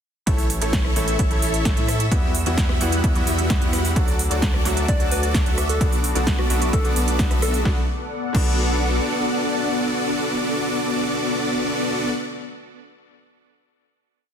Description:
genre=EDM, festival progressive house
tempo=130 BPM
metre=4/4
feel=straight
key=B minor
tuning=A4 = 439 Hz
part: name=bright grand piano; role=accompaniment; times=0.3-12.4 s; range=A2 to A4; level=-31 LUFS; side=equal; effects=sidechain pumping, ping-pong delay
part: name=lush unison pad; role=sustained chords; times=0.6-11.7 s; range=G3 to E6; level=-30 LUFS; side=left 1 dB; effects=chorus, phaser, vintage 12-bit sampler grit, sidechain pumping
part: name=dense compressed supersaw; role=riff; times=0.3-12.1 s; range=B3 to F#5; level=-24 LUFS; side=equal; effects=sidechain pumping, ping-pong delay
part: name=saturated sub bass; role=bass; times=0.3-9.0 s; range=A1 to A2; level=-25 LUFS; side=equal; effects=sidechain pumping
part: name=big-room dance drum kit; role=drums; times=0.3-8.5 s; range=crash cymbal, hi-hat, rim click, snare drum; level=-27 LUFS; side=right 1 dB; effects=overdrive
part: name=electronic kick drum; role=drums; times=0.3-8.5 s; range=none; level=-21 LUFS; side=equal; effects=overdrive
part: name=soft struck synth lead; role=melody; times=4.9-7.7 s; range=F#4 to D5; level=-30 LUFS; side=left 2 dB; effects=chorus, ping-pong delay
room=light reverb, digital ambience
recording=dense, heavily limited modern master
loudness=-18 LUFS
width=side -8 dB against mid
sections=0.3-7.7 drop; 7.7-11.3 final chord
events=drop 0.3-7.7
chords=0.3 A; 2.1 Emadd9; 4.0 D; 5.8 Bm7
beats=| 0.27 0.73 1.19 1.66 | 2.12 2.58 3.04 3.50 | 3.96 4.42 4.88 5.35 | 5.81 6.27 6.73 7.19 | 7.66 8.12 8.58 9.04 | 9.50 9.96 10.42 10.88

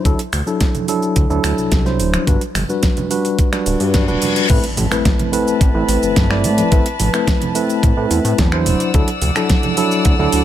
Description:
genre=nu-disco, nu disco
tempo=108 BPM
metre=4/4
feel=straight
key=A dorian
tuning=A4 = 435 Hz
part: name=mellow tine electric piano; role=accompaniment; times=0.0-10.4 s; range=F#3 to D5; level=-18 LUFS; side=moving between left 5 dB and right 2 dB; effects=auto-pan, sidechain pumping, tape echo
part: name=fat analog bass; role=bass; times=0.1-10.4 s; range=D1 to A2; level=-19 LUFS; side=equal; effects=none
part: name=electronic kick drum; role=drums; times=0.1-10.2 s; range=none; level=-16 LUFS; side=equal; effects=none
part: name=pop drum kit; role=drums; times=0.1-10.4 s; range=cabasa, crash cymbal, finger snaps, hi-hat, snare drum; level=-22 LUFS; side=right 1 dB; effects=overdrive
part: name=congas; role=percussion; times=0.3-9.8 s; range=none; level=-27 LUFS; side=right 4 dB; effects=none
part: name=reverse cymbal and impact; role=sound effects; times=3.8-6.7 s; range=none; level=-25 LUFS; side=left 1 dB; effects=none
part: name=clear studio string section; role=sustained chords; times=4.5-10.4 s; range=B4 to E6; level=-24 LUFS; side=left 2 dB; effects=sidechain pumping
room=little or no reverb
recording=none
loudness=-14 LUFS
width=side -11 dB against mid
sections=0.0-4.5 A section; 4.5-10.4 B section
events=filter sweep on tine electric piano 0.0-4.5; reverse cymbal 3.8-4.5; drop 4.5-10.4; impact 4.5-6.7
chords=0.0 Dadd9; 2.3 Gmaj7; 4.5 Amadd9; 8.7 Dadd9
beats=| 0.05 0.61 1.17 1.72 | 2.28 2.83 3.39 3.94 | 4.50 5.05 5.61 6.17 | 6.72 7.28 7.83 8.39 | 8.94 9.50 10.05

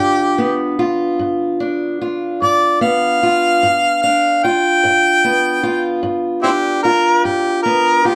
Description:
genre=acoustic country blues, solo or duo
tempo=50 BPM (dotted quarters)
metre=12/8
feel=straight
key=G mixolydian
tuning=A4 = 439 Hz
part: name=warm harmonica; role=melody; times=0.0-8.2 s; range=C4 to G5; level=-16 LUFS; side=equal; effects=plate reverb
part: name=fingerpicked steel-string acoustic guitar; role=accompaniment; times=0.0-8.2 s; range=G2 to F4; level=-20 LUFS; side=equal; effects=none
room=moderate studio reverb, RT60 0.5 s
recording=dark, warm production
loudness=-16 LUFS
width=mono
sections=0.0-8.2 A section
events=none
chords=0.0 G7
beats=0.00 1.21 2.41 | 3.61 4.82 6.03 7.23

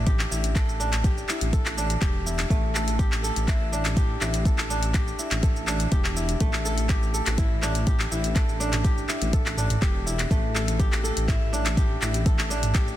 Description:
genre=afro house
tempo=123 BPM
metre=4/4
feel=straight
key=unclear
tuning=A4 = 440 Hz
part: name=kora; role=arpeggios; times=0.0-13.0 s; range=A3 to A4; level=-30 LUFS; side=equal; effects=sidechain pumping, dub echo
part: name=dark detuned saw bass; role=bass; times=0.0-12.9 s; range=E1 to A1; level=-28 LUFS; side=equal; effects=sidechain pumping
part: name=afro-pop drum kit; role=drums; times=0.1-13.0 s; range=handclaps, hi-hat, shaker, toms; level=-29 LUFS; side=equal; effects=none
part: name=electronic kick drum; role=drums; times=0.1-12.8 s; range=none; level=-23 LUFS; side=equal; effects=none
room=little or no reverb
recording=dense, heavily limited modern master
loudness=-22 LUFS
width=side -13 dB against mid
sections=0.0-13.0 A section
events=none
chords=0.0 A7(no3)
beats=0.07 | 0.55 1.04 1.53 2.02 | 2.50 2.99 3.48 3.97 | 4.46 4.94 5.43 5.92 | 6.41 6.89 7.38 7.87 | 8.36 8.85 9.33 9.82 | 10.31 10.80 11.29 11.77 | 12.26 12.75

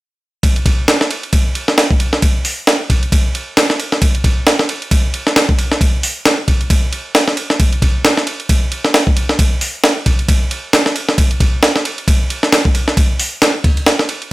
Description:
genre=breakbeat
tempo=134 BPM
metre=4/4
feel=swing 57% on 16ths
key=none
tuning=none
part: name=breakbeat sampler-style drum kit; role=drums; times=0.4-14.3 s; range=hi-hat, kick drum, ride cymbal, snare drum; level=-12 LUFS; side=equal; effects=none
room=light reverb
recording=none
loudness=-12 LUFS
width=side -19 dB against mid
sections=0.4-14.3 A section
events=none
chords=none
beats=| 0.43 0.88 1.33 1.78 | 2.23 2.67 3.12 3.57 | 4.02 4.46 4.91 5.36 | 5.81 6.26 6.70 7.15 | 7.60 8.05 8.49 8.94 | 9.39 9.84 10.29 10.73 | 11.18 11.63 12.08 12.52 | 12.97 13.42 13.87

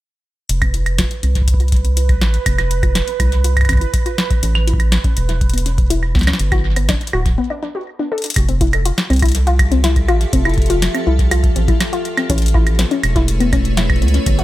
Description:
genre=IDM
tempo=122 BPM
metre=4/4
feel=straight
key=unclear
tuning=A4 = 442 Hz
part: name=round analog bass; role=bass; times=0.5-14.4 s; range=D1 to C#2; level=-16 LUFS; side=equal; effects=none
part: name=electro analog drum machine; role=drums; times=0.5-14.4 s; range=hi-hat, snare drum, woodblock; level=-21 LUFS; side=right 1 dB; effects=studio reverb, tape echo
part: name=bubbling stepped-filter texture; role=texture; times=0.5-7.4 s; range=B4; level=-28 LUFS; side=right 12 dB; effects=chorus, built-in reverb
part: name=warbly dusty pluck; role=arpeggios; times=0.6-14.4 s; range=B3 to A4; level=-22 LUFS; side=left 4 dB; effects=chorus, dub echo
part: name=electronic kick drum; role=drums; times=0.6-14.4 s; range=none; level=-17 LUFS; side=equal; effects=studio reverb
part: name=icy glass pad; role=sustained chords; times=9.5-14.4 s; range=F3 to E5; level=-24 LUFS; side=left 1 dB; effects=chorus, built-in reverb
room=little or no reverb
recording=echo-heavy mix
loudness=-13 LUFS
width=side -16 dB against mid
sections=0.5-8.4 A section; 8.4-14.4 B section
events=filter sweep on synth arpeggio sound 0.5-8.4; break 7.4-8.4; drum fill 8.1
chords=0.5 Fmaj7(no3); 4.4 Aadd9; 6.4 G; 8.4 Fmaj9; 12.3 Amaj9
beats=| 0.49 0.99 1.48 1.97 | 2.46 2.95 3.44 3.94 | 4.43 4.92 5.41 5.90 | 6.40 6.89 7.38 7.87 | 8.36 8.86 9.35 9.84 | 10.33 10.82 11.31 11.81 | 12.30 12.79 13.28 13.77 | 14.27

